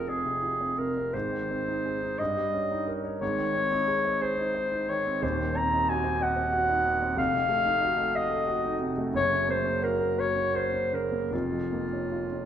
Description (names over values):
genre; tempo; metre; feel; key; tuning
classical, romantic duo for clarinet and grand piano; 50-63 BPM (dotted quarters); 6/8; rubato; unclear; A4 = 440 Hz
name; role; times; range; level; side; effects
warm clarinet; melody; 0.0-12.5 s; F4 to Bb5; -27 LUFS; left 1 dB; none
warm concert grand piano; accompaniment; 0.0-12.5 s; Eb1 to Eb5; -30 LUFS; right 1 dB; none
room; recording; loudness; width
wet recital hall reverb, RT60 1.4 s; minimal, uncompressed stereo recording; -25 LUFS; side -9 dB against mid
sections
0.0-12.5 A section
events
none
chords
0.0 Fm; 1.1 Ab; 2.2 Eb7/G; 3.2 Ab; 5.2 Cdim/Eb; 7.2 F7b9; 9.2 Gb; 11.3 Bbm/F